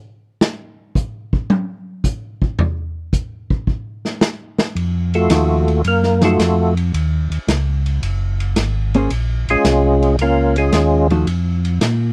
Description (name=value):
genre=soul jazz organ trio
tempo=110 BPM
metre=4/4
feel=swing 69% on 8ths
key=Bb minor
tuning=A4 = 439 Hz
part: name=vintage drum kit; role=drums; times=0.4-12.0 s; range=hi-hat, kick drum, ride cymbal, snare drum, toms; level=-23 LUFS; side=equal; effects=none
part: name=mellow tonewheel organ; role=bass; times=4.8-12.1 s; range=Gb1 to Bb2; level=-20 LUFS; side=equal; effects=overdrive, chorus vibrato, slow rotary speaker
part: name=percussive tonewheel organ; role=melody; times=5.1-11.1 s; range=Ab3 to Bb4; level=-18 LUFS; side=equal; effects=slow rotary speaker, chorus vibrato
part: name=hollow-body jazz guitar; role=accompaniment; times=5.3-11.3 s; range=F3 to C5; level=-20 LUFS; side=equal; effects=none
room=light reverb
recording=none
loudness=-18 LUFS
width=mono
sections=0.0-12.1 A section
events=tonewheel organ solo 0.0-12.1; drum solo 0.0-4.8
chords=0.0 N.C.; 4.8 F7b9; 6.9 Ebm7; 9.1 Bbm9; 11.3 N.C.